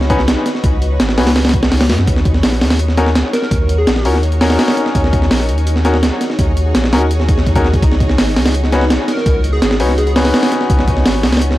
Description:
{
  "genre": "drum and bass, jungle",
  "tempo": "167 BPM",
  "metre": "4/4",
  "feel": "straight",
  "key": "Eb minor",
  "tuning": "A4 = 440 Hz",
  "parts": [
    { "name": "granular cloud pad", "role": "sustained chords", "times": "0.0-11.6 s", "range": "Cb4 to Db5", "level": "-23 LUFS", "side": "equal", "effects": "built-in reverb" },
    { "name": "bright concert grand piano", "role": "stabs", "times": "0.0-11.6 s", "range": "Db4 to Cb5", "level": "-19 LUFS", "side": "left 3 dB", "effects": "dub echo" },
    { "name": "soft dub sub bass", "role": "bass", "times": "0.0-11.6 s", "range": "Ab1 to Gb2", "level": "-16 LUFS", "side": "equal", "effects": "tube saturation" },
    { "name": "breakbeat sampler-style drum kit", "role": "drums", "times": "0.0-11.6 s", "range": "hi-hat, kick drum, snare drum", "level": "-14 LUFS", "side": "equal", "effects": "studio ambience" },
    { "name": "plucky unison lead", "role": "melody", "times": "3.3-4.1, 9.1-10.1 s", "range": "Ab4 to Bb4", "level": "-21 LUFS", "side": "equal", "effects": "cassette tape, dub echo" }
  ],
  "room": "little or no reverb",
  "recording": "dry, gritty hardware recording, transformer saturation, vinyl crackle",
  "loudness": "-11 LUFS",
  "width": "side -16 dB against mid",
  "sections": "0.0-11.6 A section",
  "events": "none",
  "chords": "0.0 Db9sus4; 2.1 Ebm7; 7.8 Db9sus4",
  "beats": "0.28 | 0.64 1.00 1.36 1.72 | 2.08 2.43 2.79 3.15 | 3.51 3.87 4.23 4.59 | 4.95 5.31 5.67 6.03 | 6.39 6.75 7.11 7.46 | 7.82 8.18 8.54 8.90 | 9.26 9.62 9.98 10.34 | 10.70 11.06 11.42"
}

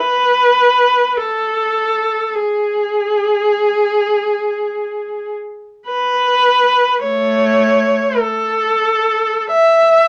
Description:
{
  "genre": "classical, free, expressive piece for unaccompanied viola",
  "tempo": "44-54 BPM",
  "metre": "4/4",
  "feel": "rubato",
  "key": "A major",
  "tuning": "A4 = 440 Hz",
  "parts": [
    { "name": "rich viola", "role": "solo", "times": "0.0-10.1 s", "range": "A3 to E5", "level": "-15 LUFS", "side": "equal", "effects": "none" }
  ],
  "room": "light reverb",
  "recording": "none",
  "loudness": "-15 LUFS",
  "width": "mono",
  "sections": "0.0-10.1 A section",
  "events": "none",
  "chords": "none",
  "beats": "1.18 | 2.37 3.56 4.75 5.88 | 7.03 8.21 9.49"
}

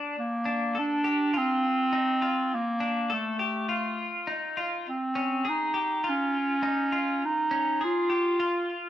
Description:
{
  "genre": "dream pop",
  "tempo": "102 BPM",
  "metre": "4/4",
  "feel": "straight",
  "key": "unclear",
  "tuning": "A4 = 438 Hz",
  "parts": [
    { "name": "clean electric guitar", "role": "arpeggios", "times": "0.0-8.9 s", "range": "Db4 to A4", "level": "-31 LUFS", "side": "left 2 dB", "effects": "wide subtle chorus, digital delay" },
    { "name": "warm clarinet", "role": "melody", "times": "0.2-8.9 s", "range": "A3 to F4", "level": "-26 LUFS", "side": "right 1 dB", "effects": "digital delay" }
  ],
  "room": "moderate recital hall reverb, RT60 1.4 s",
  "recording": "none",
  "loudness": "-25 LUFS",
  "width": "side -12 dB against mid",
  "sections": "0.2-8.9 A section",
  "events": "none",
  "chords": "0.2 Bbmaj7; 4.9 Dbadd9",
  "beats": "| 0.16 0.75 1.34 1.93 | 2.52 3.10 3.69 4.28 | 4.87 5.46 6.04 6.63 | 7.22 7.81 8.40"
}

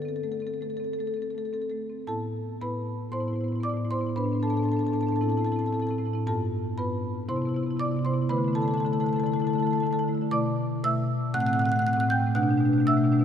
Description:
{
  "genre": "classical, contemporary piece for solo marimba",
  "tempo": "116 BPM",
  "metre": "4/4",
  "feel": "rubato",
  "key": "A dorian",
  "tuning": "A4 = 440 Hz",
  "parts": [
    { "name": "marimba with soft mallets", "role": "solo", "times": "0.0-13.2 s", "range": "G2 to G6", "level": "-24 LUFS", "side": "left 1 dB", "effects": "none" }
  ],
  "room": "wet cathedral reverb, RT60 5.1 s",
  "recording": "none",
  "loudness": "-24 LUFS",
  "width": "side -8 dB against mid",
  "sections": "0.0-2.1 A section; 2.1-13.2 B section",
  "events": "none",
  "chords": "0.0 D5; 2.1 Amadd9; 4.2 Bm7/A; 5.2 C6/A; 6.3 G9; 7.3 Cmaj9; 8.3 Dsus2; 10.3 Bm7; 11.3 Am6; 12.4 Bm7",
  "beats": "0.42 0.98 1.53 | 2.08 2.61 3.13 3.65 | 4.17 4.70 5.22 5.74 | 6.26 6.78 7.28 7.79 | 8.29 8.81 9.31 9.81 | 10.32 10.83 11.34 11.85 | 12.36 12.87"
}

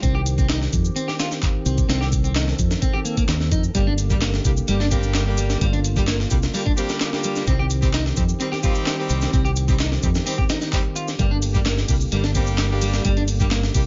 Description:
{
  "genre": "breakbeat, breaks",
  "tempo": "129 BPM",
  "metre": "4/4",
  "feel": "straight",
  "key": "G minor",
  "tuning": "A4 = 441 Hz",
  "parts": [
    { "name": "tonewheel organ", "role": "sustained chords", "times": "0.0-13.9 s", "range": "D3 to A4", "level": "-33 LUFS", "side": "equal", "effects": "overdrive, chorus vibrato, slow rotary speaker, vintage 12-bit sampler grit, sidechain pumping" },
    { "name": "clean electric guitar", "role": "riff", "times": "0.0-13.6 s", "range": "G3 to G4", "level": "-30 LUFS", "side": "equal", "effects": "subtle chorus, delay" },
    { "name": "fingered electric bass", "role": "bass", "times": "0.0-13.9 s", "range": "G1 to F2", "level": "-24 LUFS", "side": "equal", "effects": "tube saturation" },
    { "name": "breakbeat sampler-style drum kit", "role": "drums", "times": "0.0-13.9 s", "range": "hi-hat, kick drum, snare drum", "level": "-25 LUFS", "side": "equal", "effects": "studio reverb" },
    { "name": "punchy analog drum machine", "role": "drums", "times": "0.0-13.8 s", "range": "handclaps, ride cymbal, shaker", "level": "-34 LUFS", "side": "equal", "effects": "studio reverb" },
    { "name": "clear horn section", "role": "stabs", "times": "3.7-13.8 s", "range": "G3 to G4", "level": "-32 LUFS", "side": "equal", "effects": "delay" }
  ],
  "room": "little or no reverb",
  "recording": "nothing above 7.5 kHz",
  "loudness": "-21 LUFS",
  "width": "mono",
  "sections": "0.0-13.9 A section",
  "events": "none",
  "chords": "0.0 Cm; 3.7 Gm; 7.5 Cm; 11.2 Gm",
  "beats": "| 0.03 0.49 0.96 1.42 | 1.89 2.35 2.82 3.28 | 3.75 4.21 4.68 5.14 | 5.61 6.07 6.54 7.00 | 7.47 7.93 8.40 8.87 | 9.33 9.79 10.26 10.73 | 11.19 11.66 12.12 12.59 | 13.05 13.52"
}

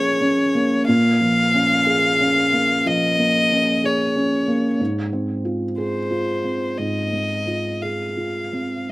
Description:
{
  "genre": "neoclassical piano and strings",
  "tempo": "55-62 BPM",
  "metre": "4/4",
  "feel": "rubato",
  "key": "unclear",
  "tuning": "A4 = 440 Hz",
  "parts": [
    { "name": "rich violin", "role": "melody", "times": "0.0-8.9 s", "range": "C5 to F5", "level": "-20 LUFS", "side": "left 1 dB", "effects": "none" },
    { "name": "felt-muted upright piano", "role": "accompaniment", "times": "0.0-8.9 s", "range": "Ab2 to Ab4", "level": "-20 LUFS", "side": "right 1 dB", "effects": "none" }
  ],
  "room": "little or no reverb",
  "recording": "recorded outdoors, with no room sound",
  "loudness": "-17 LUFS",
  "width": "side -20 dB against mid",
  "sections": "0.0-8.9 A section",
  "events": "none",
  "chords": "0.0 Bbm7; 4.8 Fm/Ab",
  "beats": "| 0.87 1.86 2.85 3.83 | 4.80 5.77 6.77 7.81 | 8.88"
}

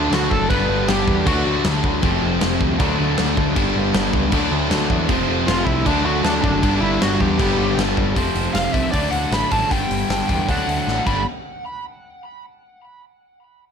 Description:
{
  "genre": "punk rock",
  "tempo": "157 BPM",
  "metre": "4/4",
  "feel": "straight",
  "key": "G major",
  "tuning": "A4 = 438 Hz",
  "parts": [
    { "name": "smooth overdriven lead guitar", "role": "melody", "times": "0.0-1.6, 5.5-11.2 s", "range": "D4 to B5", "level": "-24 LUFS", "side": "equal", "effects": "tape echo" },
    { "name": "distorted electric guitar", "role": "riff", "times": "0.0-11.2 s", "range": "F2 to D4", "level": "-23 LUFS", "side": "left 14 dB", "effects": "distortion" },
    { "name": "distorted electric guitar", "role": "riff", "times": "0.0-11.2 s", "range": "F2 to D4", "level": "-25 LUFS", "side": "right 14 dB", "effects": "distortion" },
    { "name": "growling picked electric bass", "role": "bass", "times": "0.0-11.2 s", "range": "F1 to E2", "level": "-24 LUFS", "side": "equal", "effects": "overdrive" },
    { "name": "big rock drum kit", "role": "drums", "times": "0.1-11.2 s", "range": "crash cymbal, hi-hat, kick drum, snare drum", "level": "-23 LUFS", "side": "equal", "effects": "none" },
    { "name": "fuzz guitar", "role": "riff", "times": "2.0-8.2 s", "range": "F2 to D4", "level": "-26 LUFS", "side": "equal", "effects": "distortion" }
  ],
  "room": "little or no reverb",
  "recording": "none",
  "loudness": "-16 LUFS",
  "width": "side -7 dB against mid",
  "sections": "0.0-8.2 A section; 8.2-11.3 B section; 11.3-12.8 C section",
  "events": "drum fill 10.9-11.3",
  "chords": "0.0 D; 0.5 G; 1.3 D; 2.0 F; 2.8 D; 3.6 G; 4.3 D; 5.1 F; 5.9 D; 6.6 G; 8.2 F; 8.9 D; 9.7 G; 10.5 D; 11.1 G; 11.3 N.C.",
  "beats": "0.12 | 0.50 0.88 1.27 1.65 | 2.03 2.41 2.79 3.18 | 3.56 3.94 4.33 4.71 | 5.09 5.47 5.86 6.24 | 6.62 7.01 7.39 7.78 | 8.16 8.54 8.93 9.32 | 9.70 10.09 10.48 10.87"
}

